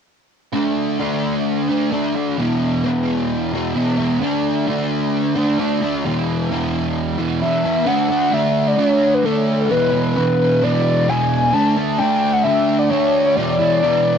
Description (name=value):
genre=rock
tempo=131 BPM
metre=4/4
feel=straight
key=unclear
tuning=A4 = 440 Hz
part: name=fuzz guitar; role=riff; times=0.5-14.2 s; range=E2 to D4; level=-17 LUFS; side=equal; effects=distortion, analog chorus, cassette tape
part: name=pure sine lead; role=melody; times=7.4-14.2 s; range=A4 to A5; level=-17 LUFS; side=left 1 dB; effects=chorus, cassette tape, tape echo
room=wet booth ambience, RT60 0.2 s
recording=home recording on cassette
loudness=-16 LUFS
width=side -7 dB against mid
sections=0.5-7.9 A section; 7.9-14.2 B section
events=none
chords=0.5 D5; 2.4 E5; 4.2 D5; 6.0 E5; 7.9 D; 9.7 E7; 11.5 D5; 13.4 E7(no3)